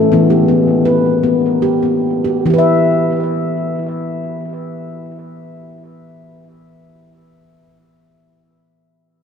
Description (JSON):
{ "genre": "world meditative, meditative tuned percussion", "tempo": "46-57 BPM (dotted quarters)", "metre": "6/8", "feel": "straight", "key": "E minor", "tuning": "A4 = 440 Hz", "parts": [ { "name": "handpan", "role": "solo", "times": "0.0-7.0 s", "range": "E3 to E5", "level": "-13 LUFS", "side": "left 1 dB", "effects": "analog delay" } ], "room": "wet plate reverb, RT60 3.6 s", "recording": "dreamy mix soaked in reverb", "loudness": "-12 LUFS", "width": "side -7 dB against mid", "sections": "0.0-2.5 A section; 2.5-7.7 B section", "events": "slowing down 0.0-2.5", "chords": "0.1 Em" }